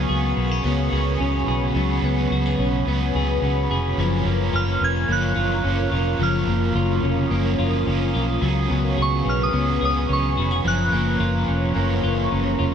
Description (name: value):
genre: dream pop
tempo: 108 BPM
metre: 4/4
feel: straight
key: F# major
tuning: A4 = 437 Hz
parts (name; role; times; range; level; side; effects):
- cranked stack guitar; accompaniment; 0.0-12.7 s; F#2 to A#4; -27 LUFS; right 5 dB; overdrive, tremolo, lush chorus, shimmer reverb
- shimmering ambient pad; sustained chords; 0.0-12.7 s; E#4 to D#6; -28 LUFS; equal; chorus, built-in reverb, phaser, shimmer reverb
- clean electric guitar; arpeggios; 0.0-12.7 s; E#3 to G#4; -25 LUFS; left 4 dB; wide subtle chorus, shimmer reverb, tape echo
- vintage muted fingered electric bass; bass; 0.0-12.7 s; E#1 to C#2; -23 LUFS; equal; none
- soft synth bell; melody; 4.6-12.6 s; C#6 to G#6; -26 LUFS; right 1 dB; chorus, shimmer reverb, tape echo
room: moderate plate reverb, RT60 3.5 s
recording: none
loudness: -19 LUFS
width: side -8 dB against mid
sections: 0.0-12.7 A section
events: none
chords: 0.0 C#7sus4; 4.0 F#maj7; 8.4 C#7sus4; 10.6 F#maj7